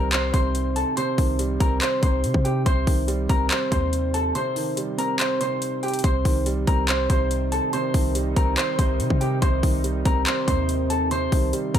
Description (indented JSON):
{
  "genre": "hip hop, trap",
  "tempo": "142 BPM",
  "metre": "4/4",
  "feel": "half-time",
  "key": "C dorian",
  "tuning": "A4 = 442 Hz",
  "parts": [
    { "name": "mellow electric guitar", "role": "melody", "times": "0.0-11.8 s", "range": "G4 to C6", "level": "-26 LUFS", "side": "left 1 dB", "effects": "tape echo" },
    { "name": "dark grand piano", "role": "accompaniment", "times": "0.0-11.8 s", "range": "C3 to C5", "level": "-27 LUFS", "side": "right 4 dB", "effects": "none" },
    { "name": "clean 808-style bass", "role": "bass", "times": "0.0-11.8 s", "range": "C2 to C3", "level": "-24 LUFS", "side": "equal", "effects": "none" },
    { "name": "trap drum kit", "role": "drums", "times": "0.1-11.8 s", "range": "handclaps, hi-hat, kick drum", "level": "-24 LUFS", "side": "equal", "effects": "overdrive" },
    { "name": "deep dark ambient pad", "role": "sustained chords", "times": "7.2-11.8 s", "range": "C3 to Eb4", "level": "-33 LUFS", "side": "equal", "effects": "chorus, built-in reverb" }
  ],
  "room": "little or no reverb",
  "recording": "none",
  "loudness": "-20 LUFS",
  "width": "side -9 dB against mid",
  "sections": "0.0-11.8 A section",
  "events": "break 4.4-6.0",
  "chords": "0.0 Cm"
}